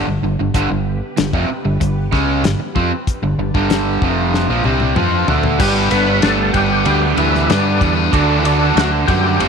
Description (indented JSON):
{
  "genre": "classic rock",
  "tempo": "95 BPM",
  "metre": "4/4",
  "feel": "straight",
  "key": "G mixolydian",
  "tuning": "A4 = 441 Hz",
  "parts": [
    { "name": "crunchy overdriven guitar", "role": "riff", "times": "0.0-9.5 s", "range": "F2 to B4", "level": "-20 LUFS", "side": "left 12 dB", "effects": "spring reverb" },
    { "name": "crunchy overdriven guitar", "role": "riff", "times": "0.0-9.5 s", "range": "F2 to B4", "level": "-19 LUFS", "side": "right 12 dB", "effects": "none" },
    { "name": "growling fingered electric bass", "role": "bass", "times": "0.0-9.5 s", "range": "F1 to G2", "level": "-19 LUFS", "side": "equal", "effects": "overdrive" },
    { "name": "string machine, full ensemble", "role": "sustained chords", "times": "0.5-9.5 s", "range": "F3 to B4", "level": "-29 LUFS", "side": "equal", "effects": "none" },
    { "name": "damped 70s drum kit", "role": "drums", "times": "0.5-9.5 s", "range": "crash cymbal, hi-hat, kick drum, ride cymbal, snare drum, toms", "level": "-20 LUFS", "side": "left 3 dB", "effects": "none" },
    { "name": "overdriven tonewheel organ", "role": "melody", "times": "5.6-9.5 s", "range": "D4 to B4", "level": "-20 LUFS", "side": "equal", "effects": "slow rotary speaker, chorus vibrato" },
    { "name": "lead guitar through a small cranked amp", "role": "second line", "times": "5.6-9.5 s", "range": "D3 to B3", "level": "-24 LUFS", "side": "right 11 dB", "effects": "none" }
  ],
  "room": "light reverb",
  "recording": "1960s-style stereo with parts hard left and right",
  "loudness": "-13 LUFS",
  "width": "side -6 dB against mid",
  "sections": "0.0-5.6 A section; 5.6-9.5 B section",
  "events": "drum fill 4.3-5.6",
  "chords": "0.0 G; 8.1 D6",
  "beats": "| 0.55 1.18 1.81 2.44 | 3.07 3.71 4.34 4.97 | 5.60 6.23 6.87 7.50 | 8.13 8.76 9.39"
}